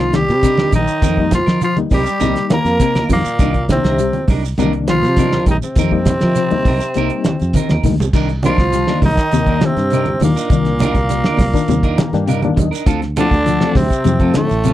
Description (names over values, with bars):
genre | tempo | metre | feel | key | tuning
afrobeat | 101 BPM | 4/4 | straight | C dorian | A4 = 442 Hz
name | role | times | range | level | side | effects
raspy tenor saxophone | melody | 0.0-14.7 s | A3 to Bb4 | -20 LUFS | equal | none
bright trombone section | second line | 0.0-14.7 s | A2 to Bb3 | -27 LUFS | left 5 dB | none
mellow trombone | second line | 0.0-14.7 s | A2 to Bb3 | -24 LUFS | right 4 dB | none
bright reed electric piano | accompaniment | 0.0-14.5 s | Eb3 to Bb5 | -21 LUFS | left 6 dB | fast tremolo
clean electric guitar | stabs | 0.0-14.7 s | G3 to Bb4 | -24 LUFS | right 6 dB | none
fingered electric bass | bass | 0.0-14.7 s | A1 to F3 | -19 LUFS | equal | none
electric guitar at the edge of break-up | arpeggios | 0.1-14.7 s | C3 to G3 | -21 LUFS | left 8 dB | analog chorus
cloth-damped thuddy drum kit | drums | 0.1-14.7 s | crash cymbal, hi-hat, kick drum, snare drum | -17 LUFS | equal | none
congas | percussion | 0.1-14.7 s | none | -22 LUFS | right 4 dB | none
shekere | percussion | 0.2-14.7 s | none | -25 LUFS | right 6 dB | none
room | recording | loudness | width
little or no reverb | dry, close 1970s-style studio recording | -13 LUFS | side -13 dB against mid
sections
0.0-8.1 A section; 8.1-14.7 B section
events
drum fill 7.6-8.1; reed electric piano fill 11.7-12.9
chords
0.0 Cm9; 1.0 F7sus4; 3.4 Cm9; 5.8 F7sus4; 12.9 Dm7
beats
0.43 | 1.03 1.62 2.21 2.81 | 3.40 3.99 4.59 5.18 | 5.77 6.37 6.96 7.55 | 8.14 8.74 9.33 9.92 | 10.51 11.10 11.70 12.29 | 12.88 13.47 14.06 14.65